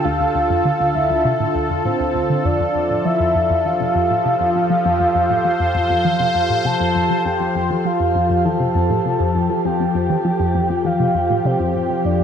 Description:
ambient, sequencer-driven space music; 100 BPM; 4/4; straight; A4 = 440 Hz
soft octave-layered synth lead; melody; 0.0-12.2 s; C5 to A5; -20 LUFS; equal; chorus, tremolo, shimmer reverb, tape echo
sweeping resonant pad; sustained chords; 0.0-12.2 s; D3 to A5; -20 LUFS; left 1 dB; chorus, shimmer reverb
tight sequenced synth; riff; 0.1-12.2 s; D2 to F3; -22 LUFS; equal; chorus, tape echo
wet spring reverb, RT60 2.6 s; echo-heavy mix; -16 LUFS; side -8 dB against mid
0.0-12.2 A section
filter sweep on synth arpeggio sound 0.0-12.2
0.0 Dm; 2.5 Fadd9

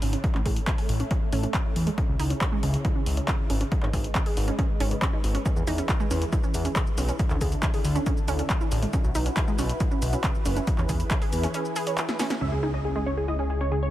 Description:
uplifting trance; 138 BPM; 4/4; straight; C# minor; A4 = 439 Hz
analog string pad; sustained chords; 0.0-13.9 s; C#3 to E5; -34 LUFS; equal; ensemble chorus, sidechain pumping
analog pluck; arpeggios; 0.0-13.8 s; C#3 to C#5; -33 LUFS; right 3 dB; chorus, sidechain pumping, dub echo
fat analog bass; bass; 0.0-13.9 s; F#1 to E2; -27 LUFS; equal; sidechain pumping
punchy analog drum machine; drums; 0.0-13.8 s; crash cymbal, handclaps, hi-hat, shaker, snare drum; -33 LUFS; equal; low-pass filter on hats, low-pass filter on snare, low-pass filter on cymbals, low-pass filter on perc
electronic kick drum; drums; 0.2-11.2 s; -26 LUFS; equal; overdrive
supersaw stab; melody; 12.4-13.9 s; G#4 to E5; -29 LUFS; equal; sidechain pumping, low-pass filter, dub echo
sub drop; sound effects; 12.4-13.9 s; -42 LUFS; equal
little or no reverb; -23 LUFS; side -14 dB against mid
0.0-12.4 A section; 12.4-13.9 B section
filter sweep on synth arpeggio sound 0.0-12.4, 12.4-13.9; filter sweep on analog synth pad 0.0-12.4; drum fill 12.1-12.4; band accent 12.3; impact 12.4-13.9
0.2 A; 2.0 C#m; 3.7 G#m; 5.5 E; 7.2 Dsus2; 8.9 Bsus4; 10.7 E; 12.4 C#m

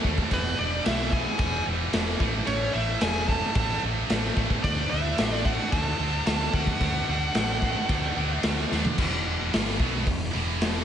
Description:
hard rock; 111 BPM; 4/4; straight; E mixolydian; A4 = 445 Hz
heavy high-gain guitar; riff; 0.0-10.8 s; E2 to D4; -30 LUFS; right 1 dB; distortion, slapback echo
hollow-body short-scale fingered electric bass; bass; 0.0-10.8 s; E1 to D#2; -30 LUFS; equal
raw garage drum kit; drums; 0.0-10.7 s; crash cymbal, hi-hat, kick drum, snare drum, toms; -27 LUFS; equal
nasal lead guitar with a parked wah; melody; 0.3-8.4 s; B4 to A5; -31 LUFS; equal; overdrive, slapback echo, analog delay
octave-fuzz lead guitar; second line; 0.3-8.4 s; B3 to A4; -37 LUFS; right 2 dB
light reverb, small room reverb; nothing above 10.7 kHz; -23 LUFS; side -9 dB against mid
0.0-9.0 A section; 9.0-10.8 B section
drum fill 8.7
0.3 E5; 2.2 A5; 4.6 D; 9.0 E5

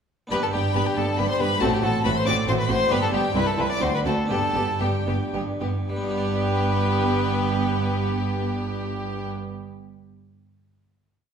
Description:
classical, baroque-style concerto movement with solo episodes; 105-140 BPM; 3/4; straight; G major; A4 = 441 Hz
rich violin; melody; 0.3-9.3 s; G4 to D5; -27 LUFS; left 2 dB
warm chamber violin section; melody; 0.3-9.3 s; G5 to D6; -30 LUFS; left 4 dB
rich chamber violin section; second line; 0.3-9.3 s; E4 to G4; -30 LUFS; left 2 dB
harpsichord; accompaniment; 0.3-9.6 s; C2 to D5; -30 LUFS; right 1 dB
warm studio viola section; accompaniment; 0.3-9.3 s; B3 to C4; -30 LUFS; equal
warm chamber cello section; bass; 0.3-9.3 s; C2 to A2; -29 LUFS; right 2 dB
warm chamber double bass section; bass; 0.3-9.3 s; G1 to D2; -29 LUFS; right 4 dB
wet recital hall reverb, RT60 1.4 s; recorded in a church or concert hall; -21 LUFS; side -7 dB against mid
0.3-5.9 ritornello; 5.9-9.3 final chord
slowing down 2.3-5.9
0.3 G; 1.6 F#dim/A; 2.9 G; 3.4 Cmaj13; 3.8 D7; 4.3 G

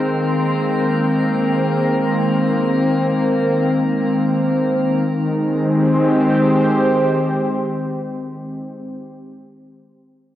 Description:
ambient; free time; Ab major; A4 = 440 Hz
warm analog pad; sustained chords; 0.0-9.1 s; Eb3 to G5; -16 LUFS; left 1 dB; lush chorus
analog drone; drone; 0.0-8.6 s; Ab3; -26 LUFS; right 2 dB; chorus
drifting glass-harmonics texture; texture; 0.0-5.1 s; Bb4 to Bb5; -27 LUFS; right 2 dB; chorus, built-in reverb
wet concert hall reverb, RT60 2.1 s; worn, warbling old tape, cassette tape, warbly pitch drift; -15 LUFS; side -12 dB against mid
0.0-5.1 A section; 5.1-8.3 B section
0.0 Abmaj7

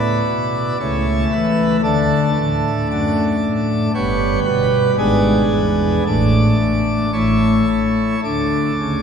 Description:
classical, chorale-style piece for pipe organ; 57 BPM; 3/4; straight; A4 = 441 Hz
pipe organ, plenum; solo; 0.0-9.0 s; G1 to D5; -15 LUFS; equal
wet cathedral reverb, RT60 4.2 s; heard from further back in the room; -15 LUFS; side -7 dB against mid
0.0-9.0 A section
0.0 E7(no3); 0.8 A/C#; 1.8 D; 4.0 G; 5.0 E7/G#; 6.1 D5/A; 7.1 A; 8.2 D5

